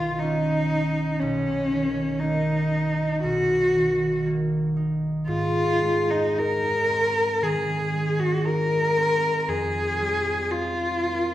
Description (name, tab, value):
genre	classical, impressionist duo for cello and harp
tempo	58 BPM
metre	4/4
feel	rubato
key	unclear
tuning	A4 = 440 Hz
part	warm cello	melody	0.0-11.3 s	Db4 to Bb4	-23 LUFS	left 1 dB	none
part	concert harp	accompaniment	0.0-11.3 s	Cb2 to D#4	-26 LUFS	right 1 dB	none
room	wet recital hall reverb, RT60 1.4 s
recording	heard from further back in the room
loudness	-21 LUFS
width	side -13 dB against mid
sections	0.0-11.3 A section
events	none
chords	0.0 Dbsus2/Cb; 1.2 Ebm7/Cb; 5.3 Ab; 9.5 Fm11